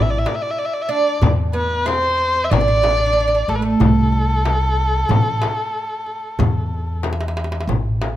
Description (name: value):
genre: Turkish makam ensemble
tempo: 93 BPM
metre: 4/4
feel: straight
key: A makam ussak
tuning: A4 = 439 Hz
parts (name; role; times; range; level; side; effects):
- dark erhu; melody; 0.0-7.0 s; A4 to E5; -20 LUFS; left 1 dB; slapback echo
- upright bass; bass; 0.0-8.2 s; A1 to E2; -20 LUFS; equal; none
- darbuka; percussion; 0.3-8.2 s; none; -23 LUFS; right 1 dB; none
- frame drum; percussion; 0.3-8.2 s; none; -23 LUFS; left 5 dB; none
- oud; second line; 0.9-7.0 s; A3 to D4; -22 LUFS; right 6 dB; none
room: light reverb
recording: close, detailed microphones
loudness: -16 LUFS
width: side -13 dB against mid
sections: 0.0-7.7 A section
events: drum fill 7.0-7.7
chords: none